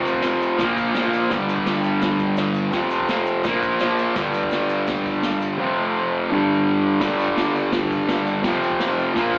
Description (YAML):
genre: garage rock duo or trio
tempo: 168 BPM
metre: 4/4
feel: straight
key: G minor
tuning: A4 = 440 Hz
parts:
  - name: fuzz guitar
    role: riff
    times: 0.0-9.4 s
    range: F2 to Bb3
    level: -22 LUFS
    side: equal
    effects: distortion, slapback echo
  - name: jazz brush drum kit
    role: drums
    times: 0.0-9.4 s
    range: crash cymbal, kick drum, ride cymbal, snare drum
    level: -30 LUFS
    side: equal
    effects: none
  - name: egg shaker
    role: percussion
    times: 0.1-5.5 s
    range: none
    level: -52 LUFS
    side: equal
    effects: none
room: light reverb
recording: live gig heard through the venue's PA, club reverb, AM radio sound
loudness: -21 LUFS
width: mono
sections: 0.0-7.0 A section; 7.0-9.4 A section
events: none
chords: 0.0 F5; 0.6 Bb5; 1.3 G5; 2.7 F5; 3.5 Bb5; 4.2 G5; 5.6 F5; 6.3 G5; 8.4 F5